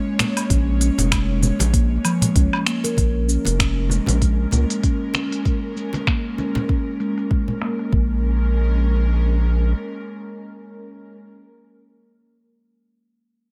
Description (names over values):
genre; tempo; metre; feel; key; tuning
organic downtempo; 97 BPM; 4/4; swing 57% on 16ths; Bb minor; A4 = 440 Hz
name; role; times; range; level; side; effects
airy breathy pad; sustained chords; 0.0-11.2 s; Ab3 to Db5; -33 LUFS; equal; chorus, sidechain pumping
steel tongue drum; arpeggios; 0.0-8.2 s; F3 to Bb4; -27 LUFS; equal; low-pass filter, delay
organic electronic drum kit; drums; 0.2-7.9 s; cabasa, finger snaps, hi-hat, woodblock; -26 LUFS; equal; low-pass filter on hats, low-pass filter on perc, low-pass filter on snare, low-pass filter on room
congas; percussion; 0.2-7.6 s; none; -29 LUFS; equal; none
round analog bass; bass; 0.5-9.7 s; F1 to Db2; -21 LUFS; equal; none
electronic kick drum; drums; 0.5-8.1 s; none; -23 LUFS; equal; none
room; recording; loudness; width
digital ambience; none; -20 LUFS; mono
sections
0.0-3.0 A section; 3.0-7.9 B section; 7.9-10.4 C section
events
filter sweep on drum 3.0-7.9; filter sweep on steel tongue drum 3.0-7.9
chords
0.0 Bbm7